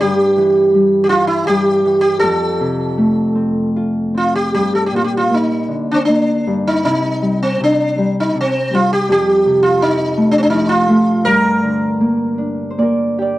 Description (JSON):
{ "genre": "celtic folk, Celtic slow air", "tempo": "73-84 BPM", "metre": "3/4", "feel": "rubato", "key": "G minor from 4.5 s", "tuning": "A4 = 440 Hz", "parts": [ { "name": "sitar", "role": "melody", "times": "0.0-12.7 s", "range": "C4 to Bb4", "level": "-14 LUFS", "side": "right 1 dB", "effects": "none" }, { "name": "Celtic harp", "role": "accompaniment", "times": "0.0-13.4 s", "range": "F2 to G5", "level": "-17 LUFS", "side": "left 1 dB", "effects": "none" } ], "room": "studio reverb", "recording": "dry, close 1970s-style studio recording", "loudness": "-13 LUFS", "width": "side -16 dB against mid", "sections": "0.0-4.5 A section; 4.5-13.4 B section", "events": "harp fill 12.4-13.4", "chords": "0.0 Em/G; 2.2 F; 4.5 Gm; 6.8 C5; 9.1 F; 11.3 Gm", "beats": "| 0.01 0.74 1.48 | 2.22 2.96 3.75 | 4.54 5.30 6.08 | 6.84 7.59 8.35 | 9.09 9.81 10.53 | 11.26 11.99 12.77" }